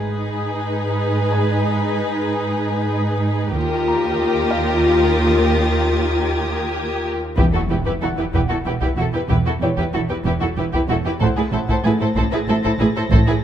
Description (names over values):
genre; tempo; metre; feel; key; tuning
cinematic, suspense film score; 94 BPM; 3/4; straight; unclear; A4 = 440 Hz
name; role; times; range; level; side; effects
rich symphonic violin section; melody; 0.0-13.3 s; A4 to C5; -26 LUFS; left 2 dB; none
warm symphonic violin section; second line; 0.0-13.3 s; F#4 to A4; -26 LUFS; left 1 dB; none
warm symphonic viola section; accompaniment; 0.0-13.3 s; D#4 to E#4; -23 LUFS; equal; none
rich studio cello section; bass; 0.0-13.4 s; D#2 to A2; -23 LUFS; right 2 dB; none
rich studio double bass section; bass; 0.0-0.3, 3.6-4.2, 7.4-13.2 s; E1 to D#2; -25 LUFS; right 3 dB; none
clear baby grand piano; texture; 0.0-13.4 s; F#4 to A#5; -32 LUFS; left 2 dB; none
warm symphonic violin section; texture; 3.5-7.0, 11.2-13.4 s; D#6 to A#6; -31 LUFS; left 2 dB; none
rich symphonic cello section; riff; 7.4-13.3 s; E2 to A3; -23 LUFS; right 1 dB; none
taiko ensemble; drums; 7.4-13.4 s; none; -24 LUFS; equal; none
impact; sound effects; 7.4-9.3 s; none; -28 LUFS; left 1 dB; none
room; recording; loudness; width
light reverb; close, detailed microphones; -17 LUFS; side -10 dB against mid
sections
0.0-7.4 A section; 7.4-13.4 B section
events
impact 7.4-9.3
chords
0.0 G#m; 3.6 D#add9; 7.4 Em; 11.2 Am